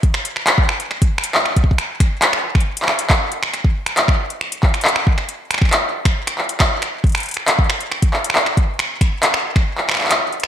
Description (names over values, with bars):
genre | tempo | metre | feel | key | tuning
IDM | 137 BPM | 4/4 | straight | none | none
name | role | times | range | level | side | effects
electro analog drum machine | drums | 0.0-10.5 s | finger snaps, handclaps, hi-hat | -17 LUFS | equal | gated reverb
electronic kick drum | drums | 0.0-9.6 s | none | -15 LUFS | equal | none
room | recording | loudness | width
light reverb | bright 1980s-style digital production | -15 LUFS | side -10 dB against mid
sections
0.0-10.5 A section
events
kick drops out 9.7-10.5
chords
none